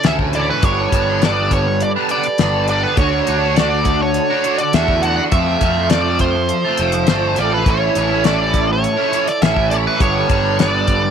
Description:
psychedelic rock; 102 BPM; 4/4; straight; A mixolydian; A4 = 440 Hz
dark smooth lead guitar; melody; 0.0-11.1 s; B4 to F#5; -19 LUFS; equal; wah, overdrive, tape echo
combo organ; sustained chords; 0.0-11.1 s; C#3 to E5; -25 LUFS; right 16 dB
crunchy overdriven guitar; riff; 0.0-11.1 s; G2 to F#4; -19 LUFS; right 1 dB; flanger
fuzz picked electric bass; bass; 0.0-11.1 s; F1 to F2; -21 LUFS; equal; overdrive
damped 70s drum kit; drums; 0.0-11.0 s; hi-hat, kick drum, snare drum; -17 LUFS; left 2 dB
light reverb, small room ambience; 1960s-style stereo; -14 LUFS; side -7 dB against mid
0.0-11.1 A section
0.0 A; 0.6 Gadd9; 3.0 D; 5.3 Fmaj7; 7.7 A; 10.0 Gadd9

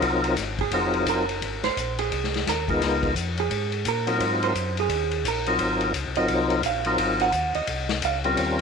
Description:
soul jazz organ trio; 172 BPM; 4/4; swing 62% on 8ths; Ab mixolydian; A4 = 436 Hz
percussive tonewheel organ; melody; 0.0-8.6 s; Gb3 to Bb4; -24 LUFS; left 2 dB; slow rotary speaker, overdrive, chorus vibrato
mellow tonewheel organ; bass; 0.0-8.6 s; F1 to Bb2; -30 LUFS; left 1 dB; slow rotary speaker
vintage drum kit; drums; 0.0-8.6 s; hi-hat, kick drum, ride cymbal, snare drum; -29 LUFS; left 7 dB
vintage hollow-body jazz guitar; accompaniment; 0.6-8.2 s; Ab4 to Gb5; -27 LUFS; right 9 dB
moderate plate reverb, RT60 1.9 s, small room ambience; 1960s-style stereo with parts hard left and right; -22 LUFS; side -5 dB against mid
0.0-8.6 A section
hollow-body jazz guitar solo 0.0-8.6
0.0 Ab13; 2.8 Db13; 4.2 Ab13

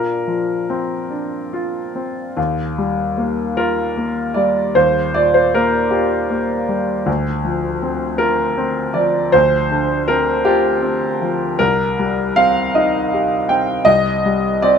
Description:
neoclassical minimalist piano; 52 BPM (dotted quarters); 6/8; uneven beats, rubato; A4 = 440 Hz
clear baby grand piano; solo; 0.0-14.8 s; C2 to G5; -15 LUFS; equal
light reverb; minimal, uncompressed stereo recording; -15 LUFS; side -7 dB against mid
0.0-2.4 A section; 2.4-14.8 B section
0.0 Bbadd9; 2.4 Ebadd9; 7.1 Bbadd9/D; 11.6 Cm7

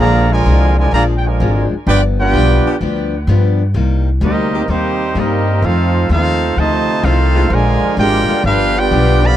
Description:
jazz, big band swing; 128 BPM; 4/4; swing 67% on 8ths; Bb major; A4 = 440 Hz
clear trumpet section; melody; 0.0-9.4 s; Bb3 to B5; -17 LUFS; equal; tape echo
brilliant trombone section; second line; 0.0-9.4 s; C3 to G4; -19 LUFS; right 6 dB
picked steel-string acoustic guitar; accompaniment; 0.0-9.3 s; F2 to Eb4; -22 LUFS; left 6 dB
mellow saxophone section; sustained chords; 0.0-8.9 s; D3 to Ab4; -22 LUFS; left 2 dB
upright bass; bass; 0.0-9.4 s; G1 to G2; -14 LUFS; equal
little or no reverb; dry, close 1970s-style studio recording; -12 LUFS; side -12 dB against mid
0.0-9.4 A section
0.0 Bb7; 1.9 G7; 3.7 Cm7; 5.6 F7; 7.5 Bb7; 8.4 G7

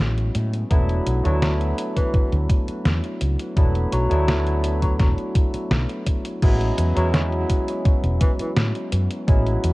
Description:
vaporwave; 84 BPM; 4/4; straight; A major; A4 = 439 Hz
barky tine electric piano; accompaniment; 0.0-9.7 s; F#3 to E4; -26 LUFS; equal; overdrive, analog chorus
woody fretless electric bass; bass; 0.0-9.7 s; E1 to A2; -21 LUFS; equal
detuned 8-bit digital drum machine; drums; 0.2-9.7 s; crash cymbal, hi-hat, snare drum; -26 LUFS; equal; small room reverb
electronic kick drum; drums; 0.7-9.4 s; -18 LUFS; equal; small room reverb
breathy tenor saxophone; melody; 1.2-8.5 s; E3 to F#3; -31 LUFS; left 1 dB; tape echo
digital ambience; cassette tape; -18 LUFS; side -21 dB against mid
0.0-6.4 A section; 6.4-9.7 B section
0.0 Amaj13; 0.7 E9sus4; 6.4 Amaj13

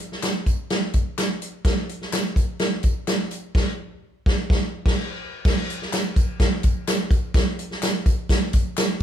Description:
soul; 126 BPM; 4/4; straight
swinging big-band drum kit; drums; 0.0-9.0 s; crash cymbal, hi-hat, kick drum, snare drum; -20 LUFS; equal
handclaps and tambourine; percussion; 0.2-9.0 s; -35 LUFS; left 2 dB
little or no reverb; band playing live in one room; -20 LUFS; side -10 dB against mid
0.0-5.5 A section; 5.5-9.0 B section
band accent 3.5-5.5

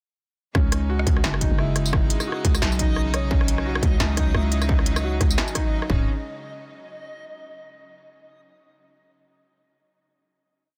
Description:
half-time drum and bass; 174 BPM; 4/4; swing 57% on 16ths, half-time; A4 = 440 Hz
bright chamber string section; sustained chords; 0.5-6.1 s; C#3 to D#4; -35 LUFS; equal; vintage 12-bit sampler grit, sidechain pumping
felt-muted upright piano; arpeggios; 0.5-6.1 s; C#4 to C#5; -34 LUFS; equal; vintage 12-bit sampler grit, dub echo
growling 808-style bass; bass; 0.5-6.1 s; C#1 to C#2; -26 LUFS; equal
electronic kick drum; drums; 0.5-6.0 s; -25 LUFS; equal; distortion
industrial drum kit; drums; 0.5-5.9 s; hi-hat, rim click, snare drum, tambourine; -29 LUFS; equal
backwards swelling texture; texture; 1.0-6.1 s; D#5; -42 LUFS; equal; built-in reverb
little or no reverb; dense, heavily limited modern master; -22 LUFS; mono
0.6-6.1 drop; 6.1-7.4 final hit
drop 0.6-6.1
0.6 C#madd9; 5.9 C#sus2; 6.1 N.C.

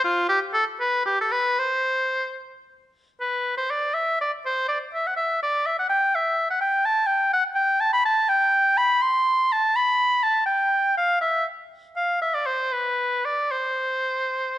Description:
classical, baroque-style fantasia for unaccompanied oboe; 72-84 BPM (dotted quarters); 6/8; rubato; G major from 3.2 s, C major from 9.0 s; A4 = 441 Hz
clear oboe; solo; 0.0-14.6 s; F4 to C6; -20 LUFS; equal
moderate recital hall reverb, RT60 1.6 s; nothing above 10.7 kHz; -20 LUFS; side -14 dB against mid
0.0-3.2 A section; 3.2-14.6 A section

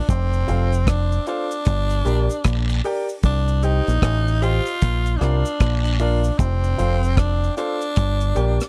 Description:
roots reggae; 76 BPM; 4/4; swing 62% on 16ths; A4 = 440 Hz
raspy tenor saxophone; melody; 0.0-8.7 s; C4 to F4; -28 LUFS; equal; tape echo
deep dub fingered electric bass; bass; 0.1-8.6 s; F1 to C2; -22 LUFS; equal
deep reggae drum kit; drums; 0.1-8.7 s; hi-hat, kick drum, rim click; -21 LUFS; equal
cabasa and guiro; percussion; 0.1-8.7 s; -39 LUFS; equal
warm upright piano; stabs; 0.5-8.6 s; F4 to G5; -28 LUFS; equal
little or no reverb; dry, close 1970s-style studio recording; -20 LUFS; mono
0.0-8.7 A section
0.1 F; 1.7 Gm; 3.2 Cm; 4.8 Bb; 6.4 F; 8.0 Gm

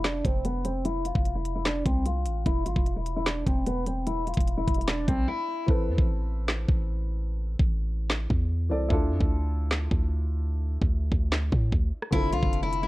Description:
hip hop, trap; 149 BPM; 4/4; half-time; A minor; A4 = 440 Hz
picked steel-string acoustic guitar; melody; 0.0-5.7, 12.1-12.9 s; B3 to F4; -30 LUFS; left 1 dB; low-pass filter
warm 808-style bass; bass; 0.0-12.9 s; E1 to A2; -28 LUFS; equal
trap drum kit; drums; 0.0-12.8 s; handclaps, hi-hat, kick drum, rim click, snare drum; -27 LUFS; equal
dark grand piano; accompaniment; 5.7-12.9 s; D3 to D5; -34 LUFS; equal; low-pass filter
small room ambience; worn, warbling old tape, cassette tape, warbly pitch drift; -24 LUFS; side -18 dB against mid
0.0-12.9 A section
filter sweep 0.0-5.7; break 5.3-5.7; hi-hats muted 5.7-12.1
0.0 F5; 2.5 N.C.; 5.7 Amadd9; 8.9 Dmadd9; 12.1 F6

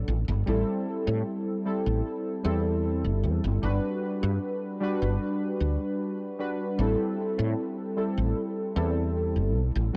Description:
vaporwave; 76 BPM; 4/4; straight; A dorian; A4 = 440 Hz
warbly lo-fi synth keys; accompaniment; 0.0-10.0 s; F#3 to B4; -31 LUFS; equal; analog chorus, tape echo
woody fretless electric bass; bass; 0.0-10.0 s; G1 to A2; -28 LUFS; equal; ensemble chorus
moderate huge ambient reverb, RT60 8.2 s; dark, warm production, nothing above 10.8 kHz; -28 LUFS; mono
0.0-10.0 A section
0.1 Am7; 3.6 Gmaj7; 6.8 Am7

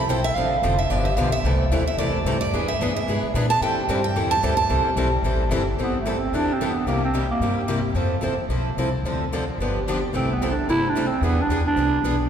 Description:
acoustic string swing (jazz manouche); 221 BPM; 4/4; swing 57% on 8ths; A minor; A4 = 440 Hz
picked steel-string acoustic guitar; second line; 0.0-4.8 s; D5 to A5; -24 LUFS; right 3 dB
upright bass; bass; 0.0-12.3 s; F1 to Bb2; -25 LUFS; left 1 dB
picked steel-string acoustic guitar; accompaniment; 0.1-12.2 s; C3 to A4; -26 LUFS; left 2 dB
picked steel-string acoustic guitar; accompaniment; 0.1-12.2 s; C3 to B4; -30 LUFS; right 2 dB
growling clarinet; melody; 5.8-7.8, 10.2-12.2 s; A3 to E4; -24 LUFS; right 2 dB
wet cathedral reverb, RT60 4.4 s; recorded in a church or concert hall; -20 LUFS; side -8 dB against mid
0.0-5.8 A section; 5.8-12.3 B section
steel-string acoustic guitar solo 0.0-5.8
0.4 Dm7; 0.9 G7; 1.4 C69; 2.5 E7; 3.6 Am7; 6.9 C7; 8.0 Fmaj7; 9.0 Dm7; 9.6 G7; 10.1 C6; 11.2 E7

